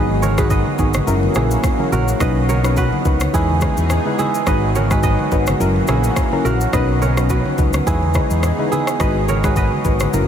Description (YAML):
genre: afrobeats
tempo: 106 BPM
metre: 4/4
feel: swing 55% on 16ths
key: unclear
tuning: A4 = 439 Hz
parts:
  - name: soft round pluck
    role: accompaniment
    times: 0.0-10.3 s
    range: F#3 to B4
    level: -22 LUFS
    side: left 1 dB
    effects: chorus
  - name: lush unison pad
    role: sustained chords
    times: 0.0-10.3 s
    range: D#3 to G#4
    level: -23 LUFS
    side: equal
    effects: chorus
  - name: kora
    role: riff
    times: 0.0-10.3 s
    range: E4 to D#5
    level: -23 LUFS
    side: right 5 dB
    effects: tape echo
  - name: fingered electric bass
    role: bass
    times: 0.0-10.3 s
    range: F#1 to E2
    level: -19 LUFS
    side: equal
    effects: none
  - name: afro-pop drum kit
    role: drums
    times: 0.2-10.3 s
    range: kick drum, rim click, shaker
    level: -22 LUFS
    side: equal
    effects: none
  - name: congas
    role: percussion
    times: 0.2-10.3 s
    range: none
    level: -28 LUFS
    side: left 2 dB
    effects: none
room: moderate huge ambient reverb, RT60 7.3 s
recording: dreamy mix soaked in reverb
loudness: -14 LUFS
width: side -9 dB against mid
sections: 0.0-10.3 A section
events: none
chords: 0.0 G#m7; 1.1 F#7; 2.2 Badd9; 3.3 Emaj7; 4.5 G#m7; 5.6 F#7; 6.7 Badd9; 7.9 Emaj7; 9.0 G#m7